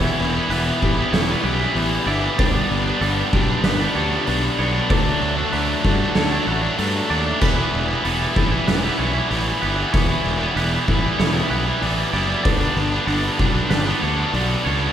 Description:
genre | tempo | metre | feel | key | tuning
post-rock | 95 BPM | 4/4 | straight | E dorian | A4 = 440 Hz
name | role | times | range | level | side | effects
twangy electric guitar | arpeggios | 0.0-14.9 s | A4 to D5 | -30 LUFS | right 3 dB | none
twelve-string electric guitar | arpeggios | 0.0-7.4 s | D3 to G4 | -28 LUFS | left 3 dB | none
tight distorted guitar | riff | 0.0-14.9 s | G2 to E4 | -21 LUFS | equal | distortion
fuzz fingered electric bass | bass | 0.0-14.9 s | E1 to G2 | -23 LUFS | equal | overdrive
oversized low-tuned drum kit | drums | 0.5-14.5 s | crash cymbal, hi-hat, kick drum, snare drum | -24 LUFS | equal | none
room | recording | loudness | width
moderate concert hall reverb, RT60 2.3 s | recorded in a church or concert hall | -17 LUFS | side -10 dB against mid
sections
0.0-14.9 A section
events
none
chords
0.0 Em; 2.4 G; 4.9 D6; 7.4 Em; 12.5 G

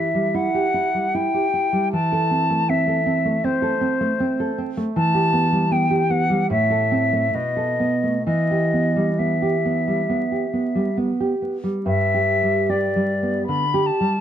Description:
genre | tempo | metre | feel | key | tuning
romantic duo for flute and classical guitar | 64-80 BPM | 4/4 | rubato | E minor | A4 = 440 Hz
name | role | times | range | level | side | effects
silver concert flute | melody | 0.0-14.2 s | C5 to B5 | -22 LUFS | left 2 dB | none
nylon-string guitar | accompaniment | 0.0-14.2 s | G2 to A4 | -21 LUFS | right 2 dB | none
room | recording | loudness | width
light reverb | close, detailed microphones, vinyl crackle | -18 LUFS | side -10 dB against mid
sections
0.0-11.9 A section; 11.9-14.2 B section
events
none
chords
0.0 Em; 1.9 Am/E; 5.0 Em; 6.5 Am; 7.3 B7; 8.3 Em; 11.9 G

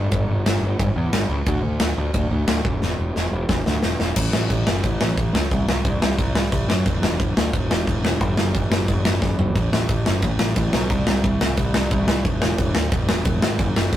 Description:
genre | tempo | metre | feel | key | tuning
punk rock | 178 BPM | 4/4 | straight | unclear | A4 = 444 Hz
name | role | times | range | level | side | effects
fuzz picked electric bass | bass | 0.0-14.0 s | E1 to F#2 | -22 LUFS | equal | overdrive
big rock drum kit | drums | 0.1-14.0 s | crash cymbal, kick drum, ride cymbal, snare drum, toms | -21 LUFS | equal | none
room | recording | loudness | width
light reverb | rough rehearsal-room recording, tube saturation | -18 LUFS | side -12 dB against mid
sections
0.0-4.2 A section; 4.2-14.0 B section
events
half time 0.0-4.2; drum fill 2.8-4.2, 9.2-9.6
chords
none

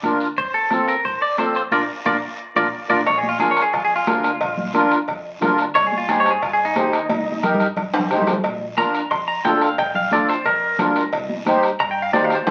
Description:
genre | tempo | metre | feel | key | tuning
latin, cumbia | 179 BPM | 4/4 | straight | Bb major | A4 = 441 Hz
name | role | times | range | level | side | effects
clean electric guitar | melody | 0.0-12.5 s | Eb4 to C6 | -22 LUFS | equal | spring reverb
accordion | accompaniment | 0.0-12.5 s | C4 to C5 | -22 LUFS | equal | light tremolo tuning
upright bass | bass | 0.0-12.5 s | F1 to G2 | -41 LUFS | equal | none
bombo | percussion | 0.0-12.5 s | none | -29 LUFS | equal | none
congas | percussion | 0.0-12.5 s | none | -30 LUFS | equal | none
guiro | percussion | 0.0-12.5 s | none | -42 LUFS | equal | none
cowbell and timbales | percussion | 3.1-12.5 s | none | -29 LUFS | equal | none
room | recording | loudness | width
wet small room reverb, RT60 0.5 s | very old 78 rpm record, vinyl crackle | -20 LUFS | mono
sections
0.0-3.1 A section; 3.1-12.5 B section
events
band accent 1.7-3.1; clean electric guitar solo 3.1-12.5; drum fill 7.1-8.4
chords
0.4 F; 1.7 Bb; 5.8 Cm; 8.4 Bb; 11.1 Cm

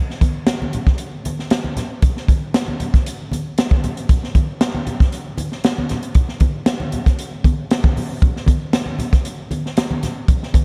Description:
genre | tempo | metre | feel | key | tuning
funk | 116 BPM | 4/4 | straight | none | none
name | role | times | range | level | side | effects
swinging big-band drum kit | drums | 0.1-10.6 s | hi-hat, kick drum, snare drum | -19 LUFS | equal | none
congas | percussion | 0.2-10.6 s | none | -28 LUFS | equal | none
room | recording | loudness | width
little or no reverb | dark, warm production | -19 LUFS | mono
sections
0.0-10.6 A section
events
none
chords
none

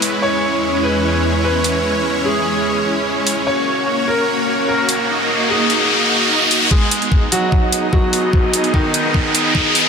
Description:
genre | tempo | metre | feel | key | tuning
heavy wobble dubstep | 148 BPM | 4/4 | half-time | G# minor | A4 = 440 Hz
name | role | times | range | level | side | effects
clear concert grand piano | melody | 0.0-9.9 s | D#3 to C#5 | -20 LUFS | equal | lush chorus, analog delay
supersaw chords | sustained chords | 0.0-9.9 s | E2 to D#5 | -18 LUFS | equal | lush chorus, sidechain pumping, low-pass filter
electronic hi-hat | drums | 0.0-9.8 s | none | -19 LUFS | right 1 dB | high-pass filter on hats, small room ambience
riser | sound effects | 4.5-9.9 s | none | -18 LUFS | left 1 dB | none
electronic kick drum | drums | 6.7-9.6 s | none | -15 LUFS | equal | small room ambience
room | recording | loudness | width
wet huge ambient reverb, RT60 5.0 s | dreamy mix soaked in reverb, high-pass filter | -14 LUFS | side -6 dB against mid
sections
0.0-6.7 A section; 6.7-9.9 B section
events
riser 4.5-6.7, 6.7-9.9; build-up 6.7-9.9; filter sweep 6.7-9.9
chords
0.2 C#m/E; 3.5 F#; 5.1 D#m; 6.7 G#m

